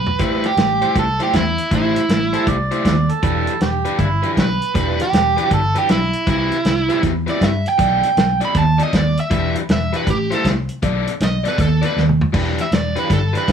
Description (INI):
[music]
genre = electric blues shuffle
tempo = 158 BPM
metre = 4/4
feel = swing 64% on 8ths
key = E minor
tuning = A4 = 440 Hz
[part]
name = biting overdriven guitar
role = melody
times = 0.0-13.5 s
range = E4 to B5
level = -19 LUFS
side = right 4 dB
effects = none
[part]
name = vintage muted fingered electric bass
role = bass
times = 0.0-13.5 s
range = E1 to G2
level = -20 LUFS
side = equal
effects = none
[part]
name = warm soul drum kit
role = drums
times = 0.1-13.5 s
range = crash cymbal, hi-hat, kick drum, snare drum, toms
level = -20 LUFS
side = equal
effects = none
[part]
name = overdriven electric guitar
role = riff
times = 0.2-13.5 s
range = E3 to D5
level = -23 LUFS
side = left 5 dB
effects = none
[part]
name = overdriven harmonica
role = second line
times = 2.3-4.3 s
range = E4 to D5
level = -22 LUFS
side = right 5 dB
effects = none
[sound]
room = light reverb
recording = none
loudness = -15 LUFS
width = side -7 dB against mid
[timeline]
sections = 0.0-12.3 A section; 12.3-13.5 A section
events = drum fill 0.0, 12.0-12.3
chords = 0.2 Am7; 3.2 Em7; 6.3 Cmaj7; 7.8 B7#9; 9.3 Em7; 10.1 Am7; 10.8 B7#9; 12.3 Em7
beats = | 0.20 0.57 0.95 1.33 | 1.71 2.09 2.47 2.85 | 3.23 3.61 3.99 4.37 | 4.75 5.13 5.51 5.89 | 6.27 6.65 7.03 7.41 | 7.79 8.17 8.55 8.93 | 9.31 9.69 10.06 10.45 | 10.82 11.20 11.58 11.96 | 12.34 12.72 13.10 13.48